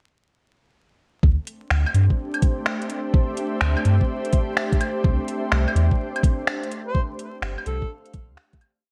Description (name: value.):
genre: future garage.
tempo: 126 BPM.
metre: 4/4.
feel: swing 66% on 16ths.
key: D minor.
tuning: A4 = 439 Hz.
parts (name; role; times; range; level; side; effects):
ethereal airy pad; sustained chords; 1.8-8.9 s; A3 to F5; -31 LUFS; equal; ensemble chorus, built-in reverb, vintage 12-bit sampler grit, sidechain pumping.
soft dub sub bass; bass; 1.2-8.4 s; G1 to G2; -21 LUFS; equal; sidechain pumping.
electronic kick drum; drums; 1.2-8.6 s; none; -22 LUFS; equal; studio reverb.
drifting glass-harmonics texture; texture; 1.9-8.9 s; C4 to C5; -38 LUFS; equal; chorus, built-in reverb.
garage drum kit; drums; 1.5-8.7 s; claves, finger snaps, hi-hat; -28 LUFS; equal; studio reverb, gated reverb.
warm alto saxophone; melody; 6.9-7.9 s; A4 to C5; -35 LUFS; equal; vintage 12-bit sampler grit, delay.
room: light reverb.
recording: bright 1980s-style digital production, vinyl crackle.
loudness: -22 LUFS.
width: mono.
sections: 1.2-8.9 groove.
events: fade-out 6.3-8.9.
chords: 1.2 D9sus4; 5.0 C; 6.9 G7sus2.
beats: | 1.23 1.71 2.19 2.66 | 3.14 3.62 4.09 4.57 | 5.04 5.52 6.00 6.47 | 6.95 7.42 7.90 8.38.